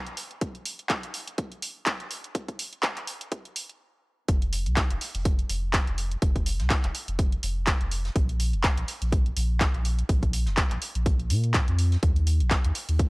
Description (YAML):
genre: deep house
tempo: 124 BPM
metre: 4/4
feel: swing 56% on 16ths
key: unclear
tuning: A4 = 439 Hz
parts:
  - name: warm sub bass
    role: bass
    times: 0.1-13.1 s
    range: F1 to Bb2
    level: -26 LUFS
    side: equal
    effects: sidechain pumping, high-pass filter
  - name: house drum kit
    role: drums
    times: 0.1-13.1 s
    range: handclaps, hi-hat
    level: -30 LUFS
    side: equal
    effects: overdrive
  - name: electronic kick drum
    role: drums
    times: 0.4-13.1 s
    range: none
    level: -25 LUFS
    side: equal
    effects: overdrive
  - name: soft brush drum kit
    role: drums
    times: 4.3-13.1 s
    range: hi-hat, snare drum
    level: -44 LUFS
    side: right 1 dB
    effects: none
room: little or no reverb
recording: cassette tape, high-pass filter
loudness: -24 LUFS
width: side -26 dB against mid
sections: 0.0-4.3 A section; 4.3-13.1 B section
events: build-up 0.0-4.3; filter sweep 0.0-4.3; stop 3.8-4.3; drop 4.3-13.1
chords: none